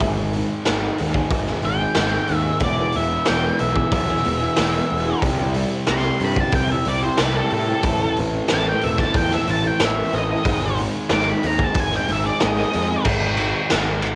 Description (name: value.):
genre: quiet-loud alternative rock.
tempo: 92 BPM.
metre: 4/4.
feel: straight.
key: unclear.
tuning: A4 = 438 Hz.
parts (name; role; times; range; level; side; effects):
fingerpicked old ladder-braced acoustic guitar; arpeggios; 0.0-13.1 s; E2 to A4; -28 LUFS; equal; cassette tape.
thick fuzz guitar; riff; 0.0-14.2 s; E2 to C4; -30 LUFS; equal; distortion, cassette tape.
fuzz picked electric bass; bass; 0.0-14.2 s; E1 to A2; -28 LUFS; equal; overdrive.
raw garage drum kit; drums; 0.0-14.2 s; crash cymbal, hi-hat, kick drum, ride cymbal, snare drum; -25 LUFS; equal; cassette tape.
octave-fuzz lead guitar; melody; 1.7-13.0 s; A4 to D6; -27 LUFS; equal; distortion, cassette tape.
room: small room ambience.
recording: home recording on cassette.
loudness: -20 LUFS.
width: mono.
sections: 0.0-13.1 A section; 13.1-14.2 B section.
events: lead electric guitar solo 0.0-13.1.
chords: 0.0 G#; 2.6 E; 5.2 C; 7.8 Am; 10.5 G#; 13.1 G#5.